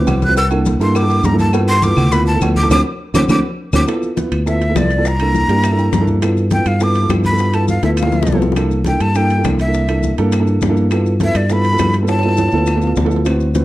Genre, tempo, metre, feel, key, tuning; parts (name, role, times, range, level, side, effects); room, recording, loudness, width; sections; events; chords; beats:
Afro-Cuban jazz; 205 BPM; 4/4; straight; G mixolydian; A4 = 443 Hz
breathy jazz flute; melody; 0.0-12.9 s; D5 to F#6; -19 LUFS; equal; plate reverb
dark upright piano; accompaniment; 0.0-13.6 s; Bb3 to Bb5; -18 LUFS; right 2 dB
fingered electric bass; bass; 0.0-13.6 s; C2 to G2; -16 LUFS; equal
claves; percussion; 0.1-13.4 s; -34 LUFS; left 2 dB
congas; percussion; 0.1-13.6 s; -23 LUFS; left 1 dB
cowbell and bongos; percussion; 0.1-13.6 s; -26 LUFS; left 7 dB
maracas; percussion; 0.1-13.6 s; -36 LUFS; left 9 dB
timbales and agogo bells; percussion; 0.1-13.6 s; -26 LUFS; right 5 dB
light reverb; dark, warm production; -13 LUFS; side -16 dB against mid
0.0-3.9 A section; 3.9-13.6 B section
flute solo 0.0-3.9; band accent 2.7-3.9; upright piano fill 5.3-6.2, 12.7-13.3; drum fill 7.8-8.6, 12.1-13.3
0.4 C13; 1.5 G13; 2.7 D7; 3.9 Dm13; 5.0 C13; 6.2 G13; 8.6 C13; 10.9 G13
0.08 | 0.37 0.66 0.95 1.25 | 1.54 1.83 2.12 2.42 | 2.71 3.00 3.29 3.58 | 3.88 4.17 4.46 4.76 | 5.05 5.34 5.63 5.93 | 6.22 6.51 6.81 7.10 | 7.39 7.69 7.98 8.27 | 8.57 8.86 9.15 9.45 | 9.74 10.03 10.33 10.62 | 10.91 11.21 11.50 11.79 | 12.09 12.38 12.67 12.97 | 13.26 13.55